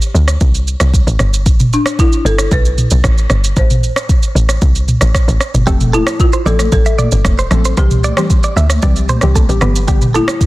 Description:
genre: afrobeats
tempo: 114 BPM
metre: 4/4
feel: straight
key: unclear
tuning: A4 = 440 Hz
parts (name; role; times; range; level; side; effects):
- folk marimba with medium mallets; melody; 0.0-10.5 s; D4 to C5; -19 LUFS; left 2 dB; digital delay
- afro-pop drum kit; drums; 0.0-10.5 s; kick drum, rim click, shaker, toms; -13 LUFS; equal; soft clipping on snare
- woody log drum bass; bass; 0.1-10.2 s; F1 to D2; -13 LUFS; equal; none
- hollow square pluck; accompaniment; 5.7-10.4 s; D3 to A4; -19 LUFS; left 2 dB; chorus
- direct-recorded clean electric guitar; riff; 5.7-10.2 s; G4 to E5; -21 LUFS; right 4 dB; spring reverb, digital delay
- congas; percussion; 5.9-10.3 s; none; -26 LUFS; right 2 dB; none
room: little or no reverb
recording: dense, heavily limited modern master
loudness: -10 LUFS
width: side -18 dB against mid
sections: 0.0-10.5 A section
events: none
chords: 0.0 C5; 1.2 G; 3.6 Am; 5.7 F; 7.8 C; 9.6 G

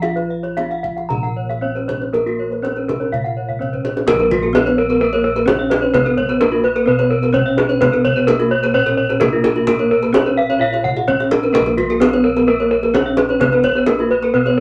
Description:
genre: Balinese gamelan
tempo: 129 BPM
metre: 4/4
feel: straight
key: Bb pelog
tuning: A4 = 438 Hz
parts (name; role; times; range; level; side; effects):
- gamelan-type bronze metallophone; melody; 0.0-14.6 s; Bb3 to Bb4; -23 LUFS; equal; none
- gamelan-type bronze metallophone; arpeggios; 0.0-14.6 s; Gb4-20c to Bb5; -20 LUFS; equal; none
- gamelan-type bossed gongs; bass; 0.0-14.6 s; Bb1 to Cb5+20c; -26 LUFS; equal; none
- kendang; percussion; 0.0-14.5 s; none; -24 LUFS; equal; none
- gamelan-type bronze metallophone; arpeggios; 0.3-14.6 s; F4-30c to Gb5-20c; -26 LUFS; equal; none
room: moderate studio reverb, RT60 0.5 s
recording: none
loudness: -16 LUFS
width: mono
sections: 0.0-4.1 A section; 4.1-14.6 B section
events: drum fill 3.5-4.1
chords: none

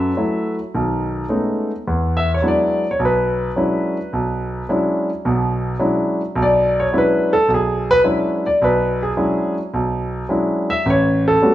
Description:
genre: solo jazz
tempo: 107 BPM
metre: 4/4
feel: swing 68% on 8ths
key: E mixolydian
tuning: A4 = 439 Hz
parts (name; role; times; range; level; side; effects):
- warm grand piano; solo; 0.0-11.5 s; A1 to E5; -16 LUFS; equal; none
room: wet stone room reverb, RT60 1.2 s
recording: band playing live in one room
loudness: -16 LUFS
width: side -13 dB against mid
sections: 0.0-1.9 A section; 1.9-11.5 B section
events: grand piano solo 1.9-11.5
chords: 0.0 F#m7; 0.7 B13; 1.9 E13; 10.9 A13

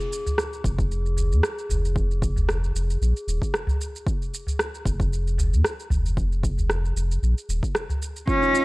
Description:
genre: organic downtempo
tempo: 114 BPM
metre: 4/4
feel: swing 54% on 16ths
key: F minor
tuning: A4 = 439 Hz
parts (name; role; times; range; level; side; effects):
- electronic shaker and rim click; drums; 0.0-8.6 s; none; -29 LUFS; equal; overdrive
- bronze singing bowl; texture; 0.0-8.6 s; Ab4; -37 LUFS; left 2 dB; none
- udu; percussion; 0.3-8.0 s; none; -27 LUFS; equal; none
- warm sub bass; bass; 0.6-7.6 s; Eb1 to F2; -23 LUFS; equal; tube saturation
- electronic kick drum; drums; 0.6-8.4 s; none; -26 LUFS; equal; overdrive
- dark cello; melody; 8.3-8.6 s; Db4; -18 LUFS; equal; none
- airy breathy pad; sustained chords; 8.3-8.6 s; Db3 to F4; -47 LUFS; equal; none
- handpan; arpeggios; 8.3-8.6 s; Eb4 to F4; -27 LUFS; right 4 dB; none
room: studio reverb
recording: dry, gritty hardware recording, cassette tape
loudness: -22 LUFS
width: side -21 dB against mid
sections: 0.0-8.6 A section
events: none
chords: 0.0 Fm; 2.0 Ab5/F; 4.1 Fm; 6.2 N.C.

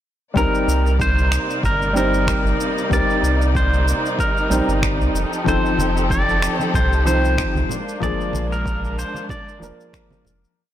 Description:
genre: sunset chillout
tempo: 94 BPM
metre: 4/4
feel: swing 55% on 16ths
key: C minor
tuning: A4 = 440 Hz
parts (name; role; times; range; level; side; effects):
- warm baby grand piano; accompaniment; 0.3-10.6 s; F3 to C5; -24 LUFS; moving between left 5 dB and right 3 dB; auto-pan, digital delay
- pedal steel guitar; melody; 0.4-10.2 s; Bb4 to D5; -23 LUFS; right 1 dB; digital delay
- clear studio string section; sustained chords; 0.4-10.5 s; C3 to D5; -25 LUFS; equal; none
- warm sub bass; bass; 0.4-10.5 s; F1 to C2; -20 LUFS; equal; none
- electronic kick drum; drums; 0.4-10.1 s; none; -25 LUFS; equal; small room ambience
- electronic shaker and finger snaps; drums; 0.4-10.6 s; none; -29 LUFS; left 1 dB; small room ambience, soft clipping on snare
- congas; percussion; 5.8-10.4 s; none; -30 LUFS; right 4 dB; none
room: light reverb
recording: blown-out, overdriven recording, overdrive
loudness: -17 LUFS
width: side -11 dB against mid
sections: 0.4-10.6 groove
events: fade-out 7.2-10.6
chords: 0.4 Cm7; 5.1 F7; 7.7 Bb7

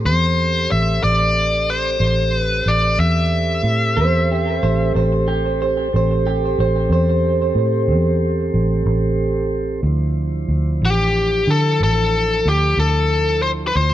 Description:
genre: slow blues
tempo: 61 BPM (dotted quarters)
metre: 12/8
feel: straight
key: A minor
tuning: A4 = 445 Hz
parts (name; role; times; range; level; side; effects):
- mellow tonewheel organ; sustained chords; 0.0-13.9 s; F3 to C5; -24 LUFS; right 4 dB; slow rotary speaker
- vintage muted fingered electric bass; bass; 0.0-13.9 s; A1 to D3; -18 LUFS; equal; none
- biting lead guitar; melody; 0.1-4.9, 10.9-13.9 s; G4 to E5; -18 LUFS; left 2 dB; overdrive
- electric guitar through a small old amp; second line; 4.0-8.8 s; G4 to C5; -22 LUFS; right 2 dB; tape echo
room: light reverb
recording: echo-heavy mix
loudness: -15 LUFS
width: side -12 dB against mid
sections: 0.0-13.9 A section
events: none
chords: 0.0 Am7; 9.9 Dm9

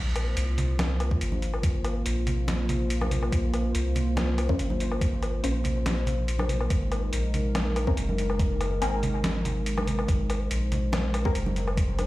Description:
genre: deep dubstep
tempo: 142 BPM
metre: 4/4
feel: swing 53% on 16ths, half-time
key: unclear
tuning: A4 = 439 Hz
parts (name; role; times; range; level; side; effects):
- dark analog pad; sustained chords; 0.0-12.1 s; Ab3 to C5; -32 LUFS; equal; chorus
- soft dub sub bass; bass; 0.0-12.1 s; Gb1 to C2; -28 LUFS; equal; tube saturation
- trip hop sampler-style drum kit; drums; 0.2-12.1 s; hi-hat, snare drum, woodblock; -33 LUFS; left 1 dB; overdrive
- congas; percussion; 0.6-12.1 s; none; -35 LUFS; right 2 dB; dub echo
- electronic kick drum; drums; 1.1-11.9 s; none; -26 LUFS; equal; overdrive
- filtered dub chord stab; stabs; 4.5-11.3 s; C4 to C5; -34 LUFS; left 2 dB; phaser, ensemble chorus, dub echo
room: light reverb, digital ambience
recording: played on a big sound system in a bare room, stone room reverb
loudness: -24 LUFS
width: side -17 dB against mid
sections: 0.0-12.1 A section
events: none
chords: 0.0 Bbsus2; 6.7 Abadd9

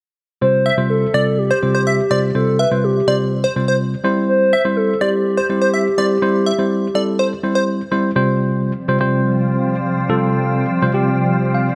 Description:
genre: pop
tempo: 124 BPM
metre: 4/4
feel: straight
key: unclear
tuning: A4 = 441 Hz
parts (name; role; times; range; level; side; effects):
- hollow clarinet-like synth lead; melody; 0.4-7.7 s; G4 to C5; -21 LUFS; equal; chorus
- mellow tine electric piano; accompaniment; 0.4-11.8 s; C3 to F5; -20 LUFS; equal; none
- plucky unison lead; melody; 0.7-7.6 s; C5 to E5; -23 LUFS; equal; none
- granular cloud pad; sustained chords; 8.7-11.8 s; C3 to C4; -22 LUFS; equal; built-in reverb
room: light reverb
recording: none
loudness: -17 LUFS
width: mono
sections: 0.4-8.2 A section; 8.2-11.8 B section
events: tine electric piano fill 11.3-11.8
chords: 0.4 Fsus2/C; 4.0 C; 8.2 Fsus2/C

